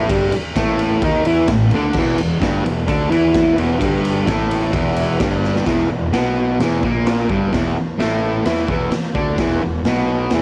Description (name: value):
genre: garage rock duo or trio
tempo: 129 BPM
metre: 4/4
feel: straight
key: unclear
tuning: A4 = 440 Hz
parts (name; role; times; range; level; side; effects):
- fuzz guitar; riff; 0.0-10.4 s; E2 to E4; -20 LUFS; equal; distortion, cassette tape
- fuzz picked electric bass; bass; 0.0-10.4 s; E1 to E2; -25 LUFS; equal; overdrive
- raw garage drum kit; drums; 0.1-10.4 s; crash cymbal, hi-hat, kick drum, ride cymbal, snare drum; -24 LUFS; equal; cassette tape
room: light reverb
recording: home recording on cassette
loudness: -18 LUFS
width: mono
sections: 0.0-5.7 A section; 5.7-10.4 B section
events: drum fill 5.4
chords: 0.0 A5; 1.9 Emadd11; 5.7 E5